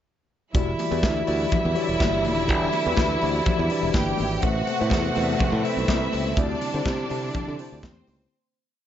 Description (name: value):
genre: disco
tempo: 123 BPM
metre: 4/4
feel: straight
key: E minor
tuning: A4 = 439 Hz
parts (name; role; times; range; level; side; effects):
- clear symphonic string section; second line; 0.5-8.3 s; C4 to G5; -28 LUFS; right 2 dB; none
- mellow tine electric piano; accompaniment; 0.5-8.3 s; D3 to E5; -27 LUFS; left 2 dB; medium stereo tremolo, tube saturation
- clear studio string section; sustained chords; 0.5-8.3 s; C3 to E4; -30 LUFS; equal; none
- modern bright fingered electric bass; bass; 0.5-8.3 s; D#1 to D3; -28 LUFS; equal; none
- modern studio drum kit; drums; 0.5-8.2 s; hi-hat, kick drum, snare drum; -27 LUFS; equal; none
- congas; percussion; 0.6-8.2 s; none; -32 LUFS; left 5 dB; none
room: light reverb, small room ambience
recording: nothing above 7.6 kHz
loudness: -21 LUFS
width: side -10 dB against mid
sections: 0.5-8.3 verse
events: fade-out 6.4-8.3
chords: 0.5 Em7; 4.4 Amadd9; 6.4 D7sus4